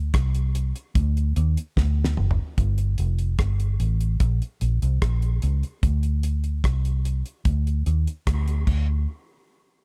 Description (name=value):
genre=dub reggae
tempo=74 BPM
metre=4/4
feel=straight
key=unclear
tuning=A4 = 438 Hz
part: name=vintage muted fingered electric bass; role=bass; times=0.0-9.1 s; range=F1 to Eb2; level=-24 LUFS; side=equal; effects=none
part: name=damped 70s drum kit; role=drums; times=0.1-8.9 s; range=crash cymbal, hi-hat, kick drum, rim click, snare drum, toms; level=-27 LUFS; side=equal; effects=none
room=little or no reverb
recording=none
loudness=-24 LUFS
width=mono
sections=0.0-2.6 A section; 2.6-9.1 B section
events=drum fill 1.8-2.6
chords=none